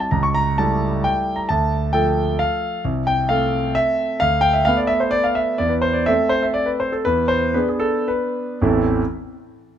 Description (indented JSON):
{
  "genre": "classical, piano waltz",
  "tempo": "104-140 BPM",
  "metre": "3/4",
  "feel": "rubato",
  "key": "A minor",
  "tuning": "A4 = 440 Hz",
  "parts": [
    { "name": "clear concert grand piano", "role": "solo", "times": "0.0-9.0 s", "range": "A1 to C#6", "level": "-17 LUFS", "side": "equal", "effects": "none" }
  ],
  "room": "light reverb",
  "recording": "close, detailed microphones",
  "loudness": "-17 LUFS",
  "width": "side -9 dB against mid",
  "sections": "0.0-8.6 A section; 8.6-9.8 B section",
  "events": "slowing down 4.9-8.6",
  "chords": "0.1 A7/C#; 1.5 Dm; 2.8 Am/C; 4.2 Dm69; 5.6 Am/E; 7.1 E7; 8.6 Am",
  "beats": "| 0.11 0.57 1.03 | 1.48 1.93 2.39 | 2.83 3.27 3.75 | 4.20 4.66 5.13 | 5.61 6.09 6.58 | 7.05 7.54 8.08 | 8.63"
}